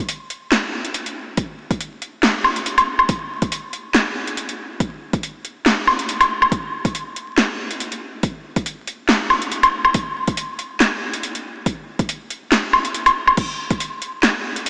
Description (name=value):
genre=dubstep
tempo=140 BPM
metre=4/4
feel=swing 54% on 16ths, half-time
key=none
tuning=none
part: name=deep house drum kit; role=drums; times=0.1-14.7 s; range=crash cymbal, handclaps, hi-hat, snare drum, woodblock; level=-17 LUFS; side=equal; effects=overdrive, studio reverb
part: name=electronic kick drum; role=drums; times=1.4-13.8 s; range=none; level=-21 LUFS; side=equal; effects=overdrive, studio reverb
room=wet huge ambient reverb, RT60 3.7 s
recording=dreamy mix soaked in reverb, vinyl crackle, small speaker sound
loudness=-17 LUFS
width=side -28 dB against mid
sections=0.0-13.4 A section; 13.4-14.7 A section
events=drop 0.0-13.4, 13.4-14.7; kick drops out 12.9-13.4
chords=none